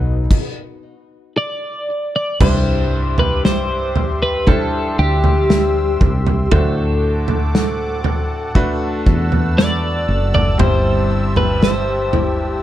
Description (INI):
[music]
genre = pop ballad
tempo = 59 BPM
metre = 4/4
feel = straight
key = C major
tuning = A4 = 440 Hz
[part]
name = twelve-string electric guitar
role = melody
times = 0.0-12.6 s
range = G4 to D5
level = -20 LUFS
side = equal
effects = wide subtle chorus
[part]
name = bright grand piano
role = accompaniment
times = 0.0-12.6 s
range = G2 to C5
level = -24 LUFS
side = equal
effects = none
[part]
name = warm analog pad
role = sustained chords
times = 0.0-12.6 s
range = G4 to E6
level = -28 LUFS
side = left 1 dB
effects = chorus
[part]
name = nylon-string guitar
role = arpeggios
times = 0.0-0.4, 10.6-12.6 s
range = B2 to G4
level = -28 LUFS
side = left 8 dB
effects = digital delay
[part]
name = woody fretless electric bass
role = bass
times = 0.0-12.6 s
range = F#1 to E2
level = -19 LUFS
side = equal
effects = none
[part]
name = loose indie drum kit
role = drums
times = 0.3-12.4 s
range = crash cymbal, kick drum, snare drum, toms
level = -18 LUFS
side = equal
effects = none
[sound]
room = little or no reverb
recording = dark, warm production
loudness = -14 LUFS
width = side -13 dB against mid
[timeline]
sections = 0.0-2.4 A section; 2.4-12.6 A section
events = stop 0.3-2.4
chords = 0.3 N.C.; 2.4 Cadd9; 6.5 D7; 10.6 C/G